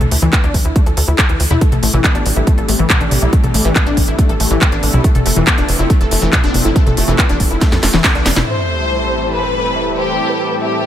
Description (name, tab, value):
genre	uplifting trance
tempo	140 BPM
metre	4/4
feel	straight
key	A minor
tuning	A4 = 438 Hz
part	wide unison pluck	arpeggios	0.0-8.4 s	E3 to A4	-19 LUFS	left 4 dB	phaser, cassette tape, sidechain pumping, ping-pong delay
part	tight sequencer bass	bass	0.0-8.4 s	F1 to F2	-17 LUFS	equal	sidechain pumping
part	house drum kit	drums	0.0-8.4 s	handclaps, hi-hat, snare drum, toms	-17 LUFS	equal	none
part	electronic kick drum	drums	0.3-8.1 s	none	-14 LUFS	equal	none
part	lush unison pad	sustained chords	1.6-10.9 s	A2 to A4	-22 LUFS	right 1 dB	chorus, sidechain pumping
part	big supersaw lead	melody	8.5-10.9 s	B4 to E5	-24 LUFS	right 1 dB	sidechain pumping, low-pass filter, ping-pong delay
part	clear studio violin section	second line	8.5-10.9 s	G4 to C5	-18 LUFS	left 3 dB	ping-pong delay
part	sub drop	sound effects	8.5-10.2 s	none	-24 LUFS	equal	none
room	light reverb, digital ambience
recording	none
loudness	-11 LUFS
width	side -11 dB against mid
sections	0.0-8.5 A section; 8.5-10.9 B section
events	filter sweep on synth pluck 0.0-8.5; drum fill 7.6-8.5; impact 8.5-10.2; filter sweep on supersaw synth 8.5-10.9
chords	0.0 D5; 1.6 Am7; 5.0 F; 8.5 Am7